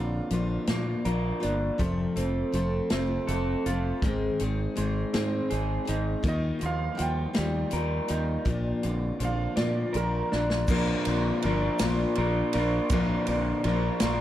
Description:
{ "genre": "folk rock and heartland rock", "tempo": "54 BPM (dotted quarters)", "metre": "6/8", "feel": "straight", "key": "unclear", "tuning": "A4 = 445 Hz", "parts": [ { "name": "clear upright piano", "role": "second line", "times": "0.0-0.3, 6.3-10.3 s", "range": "Bb4 to Bb5", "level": "-36 LUFS", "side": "right 4 dB", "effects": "tape echo" }, { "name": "picked steel-string acoustic guitar", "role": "accompaniment", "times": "0.0-14.2 s", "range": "F2 to A4", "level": "-31 LUFS", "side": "left 3 dB", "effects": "none" }, { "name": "electric guitar through a small old amp", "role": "riff", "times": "0.0-14.2 s", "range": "Ab2 to Bb4", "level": "-30 LUFS", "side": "right 1 dB", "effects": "spring reverb" }, { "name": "fingered electric bass", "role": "bass", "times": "0.0-14.2 s", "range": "F1 to Bb2", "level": "-30 LUFS", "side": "equal", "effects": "none" }, { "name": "natural country drum kit", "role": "drums", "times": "0.3-14.2 s", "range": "crash cymbal, hi-hat, kick drum, ride cymbal, snare drum", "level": "-32 LUFS", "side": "equal", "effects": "none" }, { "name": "dark baby grand piano", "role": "accompaniment", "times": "10.7-14.2 s", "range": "D4 to Bb4", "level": "-40 LUFS", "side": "right 4 dB", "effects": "none" }, { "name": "egg shaker", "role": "percussion", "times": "10.7-14.2 s", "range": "none", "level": "-44 LUFS", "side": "right 7 dB", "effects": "none" } ], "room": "small room ambience", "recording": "dark, warm production", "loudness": "-25 LUFS", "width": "side -12 dB against mid", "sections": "0.0-10.7 A section; 10.7-14.2 B section", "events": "drum fill 10.3-10.7", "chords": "0.0 Bb; 1.8 F; 4.0 Ab; 6.2 Ebadd9; 8.5 Bb", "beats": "0.68 | 1.79 2.91 | 4.02 5.13 | 6.25 7.36 | 8.48 9.59 | 10.70 11.81 | 12.92 14.03" }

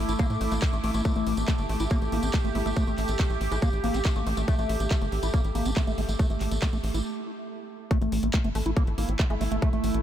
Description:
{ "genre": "psychedelic trance", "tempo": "140 BPM", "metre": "4/4", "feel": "straight", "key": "unclear", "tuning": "A4 = 440 Hz", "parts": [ { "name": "evolving wavetable pad", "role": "sustained chords", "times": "0.0-10.0 s", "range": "A3 to G4", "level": "-34 LUFS", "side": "right 1 dB", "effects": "chorus, built-in reverb, sidechain pumping" }, { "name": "tight sequencer bass", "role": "bass", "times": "0.0-10.0 s", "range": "G1 to A2", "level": "-28 LUFS", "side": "equal", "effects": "tube saturation" }, { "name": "airy breathy pad", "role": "texture", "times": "0.0-7.1 s", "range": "A3 to D6", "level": "-36 LUFS", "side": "right 1 dB", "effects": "chorus, phaser, sidechain pumping" }, { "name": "liquid acid bass", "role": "riff", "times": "0.1-10.0 s", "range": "A3 to E4", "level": "-32 LUFS", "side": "moving between left 5 dB and right 5 dB", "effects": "phaser, auto-pan, sidechain pumping, ping-pong delay" }, { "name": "drum and bass drum kit", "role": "drums", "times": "0.1-10.0 s", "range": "handclaps, hi-hat", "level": "-38 LUFS", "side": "equal", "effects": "none" }, { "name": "tambourine", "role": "percussion", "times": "0.1-7.0 s", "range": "none", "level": "-42 LUFS", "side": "right 3 dB", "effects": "none" }, { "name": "electronic kick drum", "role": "drums", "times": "0.2-9.7 s", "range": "none", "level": "-24 LUFS", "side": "equal", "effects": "none" }, { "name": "resonant blip pluck", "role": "second line", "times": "1.7-3.8, 8.6-9.4 s", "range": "A3 to E4", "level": "-42 LUFS", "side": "left 2 dB", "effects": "none" } ], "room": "light reverb, digital ambience", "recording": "none", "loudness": "-24 LUFS", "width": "side -10 dB against mid", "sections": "0.0-7.9 A section; 7.9-10.0 B section", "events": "break 7.1-7.9; drop 7.9-10.0", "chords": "0.0 A5", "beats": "0.19 0.62 | 1.05 1.48 1.91 2.34 | 2.77 3.19 3.62 4.05 | 4.48 4.91 5.34 5.77 | 6.19 6.62 7.05 7.48 | 7.91 8.34 8.77 9.19 | 9.62" }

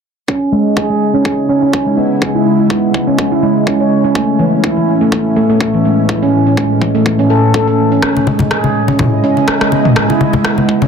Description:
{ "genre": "afro house", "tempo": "124 BPM", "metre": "4/4", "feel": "swing 55% on 16ths", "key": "C# minor", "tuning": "A4 = 442 Hz", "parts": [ { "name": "ethereal airy pad", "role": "sustained chords", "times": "1.0-10.9 s", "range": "A2 to D#5", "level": "-15 LUFS", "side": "left 1 dB", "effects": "ensemble chorus, built-in reverb, sidechain pumping" }, { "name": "handpan", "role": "arpeggios", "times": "0.3-10.9 s", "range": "E3 to C#5", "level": "-12 LUFS", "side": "right 2 dB", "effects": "sidechain pumping, low-pass filter, dub echo" }, { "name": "electronic kick drum", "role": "drums", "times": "0.3-10.8 s", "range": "none", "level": "-19 LUFS", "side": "left 1 dB", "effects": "high-pass filter on kick, high-pass filter on room" }, { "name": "house drum kit", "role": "drums", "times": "8.0-10.6 s", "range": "rim click, toms", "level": "-16 LUFS", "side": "left 1 dB", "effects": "low-pass filter on snare, low-pass filter on toms, low-pass filter on room" }, { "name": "congas", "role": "percussion", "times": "8.2-10.9 s", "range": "none", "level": "-16 LUFS", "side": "left 4 dB", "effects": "none" } ], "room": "moderate plate reverb, RT60 1.2 s", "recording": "dense, heavily limited modern master", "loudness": "-10 LUFS", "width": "side -6 dB against mid", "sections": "0.3-10.9 A section", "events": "filter sweep on handpan 0.3-10.9; filter sweep on ambient pad 0.3-10.9", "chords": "0.3 C#madd9; 4.2 Aadd9; 8.0 C#madd9", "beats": "| 0.28 0.77 1.25 1.74 | 2.22 2.70 3.19 3.67 | 4.16 4.64 5.12 5.61 | 6.09 6.58 7.06 7.54 | 8.03 8.51 8.99 9.48 | 9.96 10.45" }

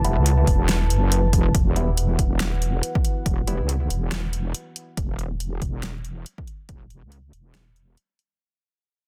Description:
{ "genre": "deep dubstep", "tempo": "140 BPM", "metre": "4/4", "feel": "swing 57% on 16ths, half-time", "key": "unclear", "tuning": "A4 = 440 Hz", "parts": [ { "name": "dark analog pad", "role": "sustained chords", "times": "0.0-8.4 s", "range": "E4 to A5", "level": "-34 LUFS", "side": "equal", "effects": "chorus" }, { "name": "percussive organ stab", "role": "stabs", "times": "0.0-3.6 s", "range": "G3 to E4", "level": "-34 LUFS", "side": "equal", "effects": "chorus, phaser, dub echo" }, { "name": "wobble bass", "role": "bass", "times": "0.0-8.0 s", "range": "E1 to C#2", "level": "-24 LUFS", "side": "equal", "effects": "chorus" }, { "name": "deep house drum kit", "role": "drums", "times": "0.0-8.3 s", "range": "hi-hat, snare drum", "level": "-30 LUFS", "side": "equal", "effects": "overdrive" }, { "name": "electronic kick drum", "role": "drums", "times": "0.5-6.8 s", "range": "none", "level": "-25 LUFS", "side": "equal", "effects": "overdrive" } ], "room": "light reverb, digital ambience", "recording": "dense, heavily limited modern master", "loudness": "-22 LUFS", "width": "mono", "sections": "0.0-1.5 A section; 1.5-8.4 B section", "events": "drop 0.0-1.5; fade-out 1.5-8.4", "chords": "0.0 Em; 1.5 E5", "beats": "0.26 0.69 1.11 | 1.54 1.97 2.40 2.83 | 3.26 3.69 4.12 4.54 | 4.97 5.40 5.83 6.26 | 6.69 7.12 7.54 7.97" }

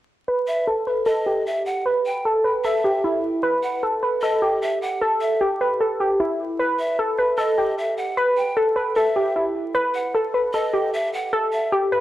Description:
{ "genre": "hip hop", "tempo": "152 BPM", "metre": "4/4", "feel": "half-time", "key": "E harmonic minor", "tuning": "A4 = 441 Hz", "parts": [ { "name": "warbly dusty pluck", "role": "melody", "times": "0.3-12.0 s", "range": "E4 to B4", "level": "-20 LUFS", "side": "equal", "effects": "chorus, low-pass filter" }, { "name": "breathy mellow large pan pipes", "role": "second line", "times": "0.5-11.7 s", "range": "D#5 to G5", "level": "-27 LUFS", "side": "right 1 dB", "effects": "tape echo" } ], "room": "light reverb", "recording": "dry, gritty hardware recording, vinyl crackle", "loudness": "-19 LUFS", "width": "side -14 dB against mid", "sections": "0.3-12.0 A section", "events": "filter sweep on synth pluck 0.3-12.0", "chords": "none", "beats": "| 0.28 0.67 1.07 1.46 | 1.86 2.25 2.65 3.04 | 3.44 3.83 4.22 4.62 | 5.01 5.41 5.80 6.20 | 6.59 6.99 7.38 7.78 | 8.17 8.57 8.96 9.36 | 9.75 10.15 10.54 10.94 | 11.33 11.72" }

